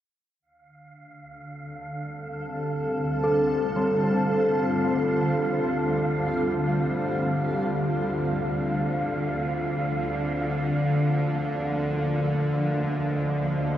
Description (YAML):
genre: dark ambient drone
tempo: free time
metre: none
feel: none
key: D phrygian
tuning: A4 = 440 Hz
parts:
  - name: granular cloud pad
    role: sustained chords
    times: 1.5-13.8 s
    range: D3 to Eb5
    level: -27 LUFS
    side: equal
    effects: built-in reverb
  - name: bowed-like drone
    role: drone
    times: 2.2-13.8 s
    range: D2 to D3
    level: -28 LUFS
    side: equal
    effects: built-in reverb
  - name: wind-like tuned noise texture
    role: texture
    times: 0.9-13.8 s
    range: F5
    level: -34 LUFS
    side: right 1 dB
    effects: built-in reverb
  - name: gamelan-type bronze metallophone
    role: arpeggios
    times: 3.2-10.6 s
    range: G3 to A4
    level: -30 LUFS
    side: right 1 dB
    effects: tape echo
room: wet huge ambient reverb, RT60 7.4 s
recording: worn, warbling old tape, cassette tape, warbly pitch drift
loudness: -23 LUFS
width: side -11 dB against mid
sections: 0.4-13.8 A section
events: fade-in on synth drone 0.4-13.8; fade-out on ambient pad 0.4-13.8; fade-out on synth texture 0.4-13.8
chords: 0.4 Dm; 9.5 Fmadd9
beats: free time